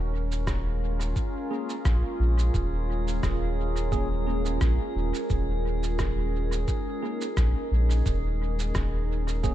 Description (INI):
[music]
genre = ambient dub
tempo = 87 BPM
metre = 4/4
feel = swing 55% on 16ths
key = unclear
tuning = A4 = 440 Hz
[part]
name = warbly tape-like pad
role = sustained chords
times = 0.0-9.5 s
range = Ab3 to Bb4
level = -32 LUFS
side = right 1 dB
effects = chorus, built-in reverb, phaser
[part]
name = soft dub sub bass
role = bass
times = 0.0-9.5 s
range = Eb1 to Bb1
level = -26 LUFS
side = equal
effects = none
[part]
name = drifting glass-harmonics texture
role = texture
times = 0.2-9.5 s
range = Ab4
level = -40 LUFS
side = right 3 dB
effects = chorus, built-in reverb
[part]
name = electronic cabasa and rim click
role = drums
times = 0.3-9.5 s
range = none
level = -38 LUFS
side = right 1 dB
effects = dub echo
[part]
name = electronic kick drum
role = drums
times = 0.5-9.5 s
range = none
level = -29 LUFS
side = equal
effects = none
[part]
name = tine electric piano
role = stabs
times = 1.5-9.5 s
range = Bb3 to Ab4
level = -37 LUFS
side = equal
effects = medium stereo tremolo, dub echo
[sound]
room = little or no reverb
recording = dark, warm production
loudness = -24 LUFS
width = side -13 dB against mid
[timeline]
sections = 0.0-9.5 A section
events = none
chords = 0.0 Bbm7/Eb